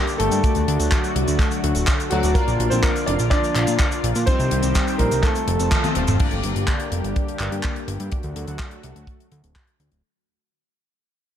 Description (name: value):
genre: italo disco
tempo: 125 BPM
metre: 4/4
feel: straight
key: G minor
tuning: A4 = 440 Hz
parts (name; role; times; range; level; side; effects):
- lush unison pad; sustained chords; 0.0-10.0 s; D3 to A4; -28 LUFS; left 1 dB; chorus, vintage 12-bit sampler grit
- chorused polysynth; stabs; 0.0-10.0 s; G3 to Eb5; -28 LUFS; left 5 dB; none
- tight funk drum kit; drums; 0.1-10.0 s; cabasa, crash cymbal, handclaps, hi-hat, toms; -26 LUFS; equal; small room ambience
- clear grand piano; melody; 0.2-5.9 s; F#3 to D5; -25 LUFS; right 1 dB; tape echo
- fat analog bass; bass; 0.2-10.0 s; D1 to Bb2; -24 LUFS; equal; none
- kick drum; drums; 0.4-9.7 s; none; -21 LUFS; equal; small room ambience
room: light reverb, studio reverb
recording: none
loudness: -18 LUFS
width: side -10 dB against mid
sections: 0.0-6.2 A section; 6.2-10.0 B section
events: drum fill 5.7-6.2; band accent 5.7; fade-out 6.2-10.0; filter sweep on analog polysynth 6.2-10.0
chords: 0.4 D; 2.4 Bb; 4.3 Cm; 5.2 F; 6.2 Gm; 8.1 D